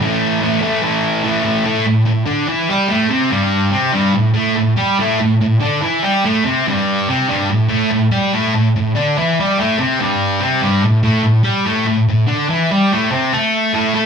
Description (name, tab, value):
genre	rock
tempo	144 BPM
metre	4/4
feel	straight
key	A minor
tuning	A4 = 440 Hz
part	thick fuzz guitar	solo	0.0-14.1 s	G2 to A4	-13 LUFS	equal	distortion, slapback echo
room	moderate club reverb, RT60 0.7 s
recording	live gig heard through the venue's PA, club reverb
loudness	-13 LUFS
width	side -6 dB against mid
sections	0.0-1.6 A section; 1.6-14.1 B section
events	none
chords	0.0 A5; 1.6 Am